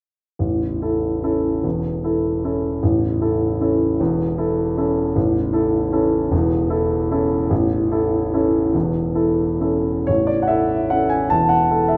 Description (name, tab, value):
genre	classical, piano waltz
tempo	117-163 BPM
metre	3/4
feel	rubato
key	A major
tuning	A4 = 440 Hz
part	warm grand piano	solo	0.4-12.0 s	A0 to A5	-19 LUFS	equal	none
room	moderate recital hall reverb, RT60 1.9 s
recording	none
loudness	-20 LUFS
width	mono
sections	0.4-10.1 A section; 10.1-12.0 B section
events	none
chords	0.4 A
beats	| 0.39 0.82 1.23 | 1.64 2.04 2.44 | 2.83 3.21 3.61 | 4.00 4.38 4.78 | 5.16 5.54 5.93 | 6.32 6.71 7.11 | 7.51 7.91 8.34 | 8.75 9.15 9.61 | 10.09 10.49 10.91 | 11.32 11.70